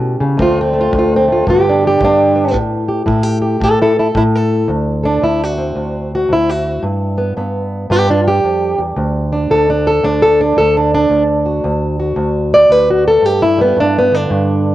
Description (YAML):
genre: acoustic country blues, solo or duo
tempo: 112 BPM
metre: 4/4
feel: swing 65% on 8ths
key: D mixolydian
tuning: A4 = 441 Hz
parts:
  - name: fingerpicked plugged-in old ladder-braced acoustic guitar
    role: melody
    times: 0.0-14.7 s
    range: D2 to D5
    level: -11 LUFS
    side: equal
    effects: cassette tape
  - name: kick drum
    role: drums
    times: 0.4-4.3 s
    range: none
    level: -24 LUFS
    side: equal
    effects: none
room: light reverb, small room ambience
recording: home recording on cassette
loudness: -11 LUFS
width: side -14 dB against mid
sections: 0.0-4.7 A section; 4.7-14.7 B section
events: steel-string acoustic guitar solo 4.7-14.7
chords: 0.4 D5; 1.5 G; 2.5 A5; 4.7 D7; 6.8 G7; 9.0 D; 13.2 G5